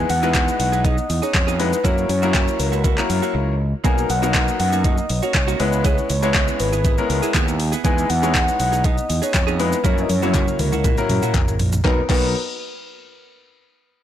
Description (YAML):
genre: dance-pop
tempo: 120 BPM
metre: 4/4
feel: straight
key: B major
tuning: A4 = 440 Hz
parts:
  - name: soft octave-layered synth lead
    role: melody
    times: 0.0-12.3 s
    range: A#4 to G#5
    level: -24 LUFS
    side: equal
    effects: chorus, ping-pong delay
  - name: bright concert grand piano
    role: accompaniment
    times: 0.0-12.3 s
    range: F#3 to C#5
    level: -24 LUFS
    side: left 5 dB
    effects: sidechain pumping
  - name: direct-recorded clean electric guitar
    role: riff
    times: 0.0-12.3 s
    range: A#3 to G#4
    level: -28 LUFS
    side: right 8 dB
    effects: wide subtle chorus
  - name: fretless electric bass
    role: bass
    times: 0.0-12.3 s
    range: G#1 to F#2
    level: -22 LUFS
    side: equal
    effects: lush chorus, sidechain pumping
  - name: smooth R&B drum kit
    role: drums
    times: 0.1-12.2 s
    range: crash cymbal, handclaps, hi-hat, kick drum, shaker, snare drum, toms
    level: -21 LUFS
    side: equal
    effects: none
  - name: group handclap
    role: percussion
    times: 0.3-12.3 s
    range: none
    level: -31 LUFS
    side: left 7 dB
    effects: none
room: light reverb, digital ambience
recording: blown-out, overdriven recording, overdrive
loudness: -16 LUFS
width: side -11 dB against mid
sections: 0.0-11.8 A section; 11.8-13.8 B section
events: break 3.3-3.8; drum fill 9.8-11.8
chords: 0.0 Emaj7; 1.8 F#7; 3.8 Bmaj7; 5.6 C#m7; 7.8 Emaj7; 9.8 F#7; 11.8 Bmaj7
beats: 0.35 0.85 1.35 | 1.85 2.35 2.85 3.35 | 3.85 4.35 4.85 5.35 | 5.85 6.35 6.85 7.35 | 7.85 8.35 8.85 9.35 | 9.85 10.35 10.85 11.35 | 11.85